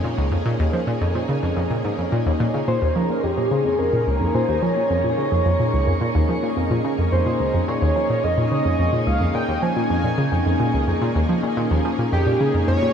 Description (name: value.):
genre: ambient, sequencer-driven space music.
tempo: 108 BPM.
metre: 4/4.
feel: straight.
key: Bb minor.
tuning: A4 = 439 Hz.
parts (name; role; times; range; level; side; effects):
string machine, full ensemble; sustained chords; 0.0-12.9 s; Bb3 to Ab4; -24 LUFS; equal; ensemble chorus.
analog pluck; riff; 0.0-12.9 s; Db2 to F3; -21 LUFS; equal; chorus, cassette tape, tape echo.
pulse-width lead; melody; 2.7-12.9 s; G4 to Ab5; -24 LUFS; equal; chorus, tape echo.
room: moderate shimmer reverb, RT60 7.0 s.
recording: none.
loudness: -18 LUFS.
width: side -7 dB against mid.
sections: 0.0-12.9 A section.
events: fade-in on string machine 0.0-12.9.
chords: 0.0 Bbm7.